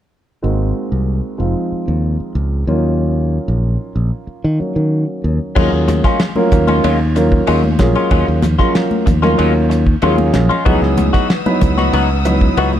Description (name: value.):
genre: electric jazz fusion.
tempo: 94 BPM.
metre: 4/4.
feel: straight.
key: Eb dorian.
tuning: A4 = 440 Hz.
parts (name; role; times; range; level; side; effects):
dark grand piano; accompaniment; 0.4-12.7 s; F3 to Cb5; -18 LUFS; right 1 dB; none.
modern bright fingered electric bass; bass; 0.4-12.8 s; F1 to Eb3; -16 LUFS; equal; none.
direct-recorded clean electric guitar; stabs; 5.6-12.8 s; Fb3 to Gb4; -20 LUFS; left 4 dB; analog chorus, tape echo.
damped 70s drum kit; drums; 5.6-12.7 s; crash cymbal, hi-hat, kick drum, ride cymbal, snare drum; -19 LUFS; equal; none.
congas; percussion; 5.9-12.8 s; none; -22 LUFS; left 2 dB; none.
dark studio string section; sustained chords; 10.7-12.8 s; Cb5 to Fb6; -24 LUFS; left 5 dB; none.
room: light reverb.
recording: none.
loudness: -13 LUFS.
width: side -11 dB against mid.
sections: 0.4-5.6 A section; 5.6-12.8 B section.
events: none.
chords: 0.4 Ab7; 1.4 Fm7; 2.7 Ebm9; 5.6 Ebm11; 10.7 Dbm11.